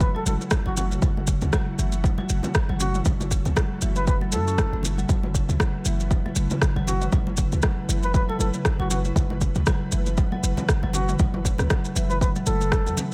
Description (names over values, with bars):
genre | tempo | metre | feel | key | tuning
afro house | 118 BPM | 4/4 | swing 56% on 16ths | F# minor | A4 = 445 Hz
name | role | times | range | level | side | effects
trumpet with bucket mute | melody | 0.0-13.0 s | F#4 to B4 | -33 LUFS | equal | delay
ethereal airy pad | sustained chords | 0.0-13.1 s | C#3 to B4 | -37 LUFS | equal | ensemble chorus, built-in reverb, sidechain pumping
marimba with medium mallets | arpeggios | 0.0-12.9 s | C#3 to C#4 | -33 LUFS | equal | sidechain pumping, delay
warm 808-style bass | bass | 0.0-12.9 s | F#1 to F#2 | -28 LUFS | equal | tube saturation, sidechain pumping
electronic kick drum | drums | 0.0-12.8 s | none | -25 LUFS | equal | overdrive, studio reverb
maracas | percussion | 0.0-13.1 s | none | -35 LUFS | equal | none
congas | percussion | 0.2-13.1 s | none | -36 LUFS | equal | none
deep house drum kit | drums | 0.5-12.8 s | rim click, toms | -31 LUFS | equal | overdrive, studio reverb
room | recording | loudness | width
small room ambience | none | -23 LUFS | mono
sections
0.0-13.1 A section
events
none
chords
0.0 F#m7